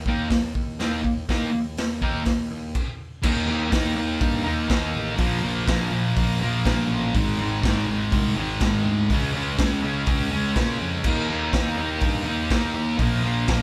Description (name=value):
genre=garage rock duo or trio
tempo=123 BPM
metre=4/4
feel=straight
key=unclear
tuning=A4 = 442 Hz
part: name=fuzz picked electric bass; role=bass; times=0.0-13.6 s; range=Ab1 to Bb2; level=-32 LUFS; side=equal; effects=overdrive
part: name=thick fuzz guitar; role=riff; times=0.1-13.6 s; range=Ab2 to Eb4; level=-26 LUFS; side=equal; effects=distortion
part: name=raw garage drum kit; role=drums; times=0.1-13.6 s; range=crash cymbal, hi-hat, kick drum, snare drum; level=-28 LUFS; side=equal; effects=none
room=light reverb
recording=band playing live in one room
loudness=-24 LUFS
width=mono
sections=0.0-3.2 A section; 3.2-13.6 B section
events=stop 2.8-3.2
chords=0.0 Eb5; 5.2 Bb5; 7.2 Ab5; 9.1 Db5; 11.1 Eb5; 13.0 Bb5